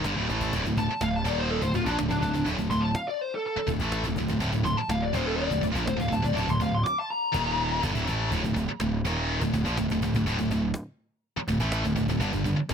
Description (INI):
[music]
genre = heavy metal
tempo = 123 BPM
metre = 4/4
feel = straight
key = unclear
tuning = A4 = 440 Hz
[part]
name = heavy high-gain guitar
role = riff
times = 0.0-12.7 s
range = D2 to A3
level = -27 LUFS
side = right 1 dB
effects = distortion
[part]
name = fuzz picked electric bass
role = bass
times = 0.0-12.7 s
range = D1 to Bb1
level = -30 LUFS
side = equal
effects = overdrive
[part]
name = cajon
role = drums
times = 0.0-12.7 s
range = none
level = -35 LUFS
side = equal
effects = none
[part]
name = smooth overdriven lead guitar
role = melody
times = 0.8-7.8 s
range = D4 to D6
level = -29 LUFS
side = left 2 dB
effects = ping-pong delay
[sound]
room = light reverb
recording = none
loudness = -24 LUFS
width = side -7 dB against mid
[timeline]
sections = 0.0-8.3 A section; 8.3-12.7 B section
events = lead electric guitar solo 0.0-8.3; drum fill 0.3; kick and snare drop out 7.3-8.3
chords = 0.0 D5; 7.3 Eb5; 7.8 D5; 12.2 G5